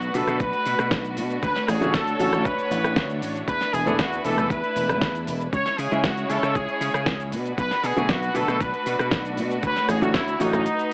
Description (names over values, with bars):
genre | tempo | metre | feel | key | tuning
nu-disco, nu disco | 117 BPM | 4/4 | straight | unclear | A4 = 440 Hz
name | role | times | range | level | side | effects
bright trumpet section | melody | 0.0-10.9 s | D#4 to C#5 | -26 LUFS | equal | none
rich studio string section | sustained chords | 0.0-10.9 s | G#3 to C#5 | -29 LUFS | equal | sidechain pumping
vintage slap bass | bass | 0.0-10.7 s | E1 to C#3 | -28 LUFS | equal | none
pop drum kit | drums | 0.0-10.9 s | cabasa, hi-hat, rim click, snare drum | -28 LUFS | equal | small room ambience
warm baby grand piano | accompaniment | 0.1-10.6 s | D3 to A4 | -26 LUFS | equal | sidechain pumping
electronic kick drum | drums | 0.4-10.2 s | none | -30 LUFS | equal | small room ambience
room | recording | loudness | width
light reverb, studio ambience | AM radio sound | -21 LUFS | side -36 dB against mid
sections
0.0-10.9 A section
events
break 10.7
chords
0.0 Bm7; 1.4 Dmaj7; 3.5 E7sus4; 5.5 C#m; 7.3 Bm7; 9.6 Dmaj7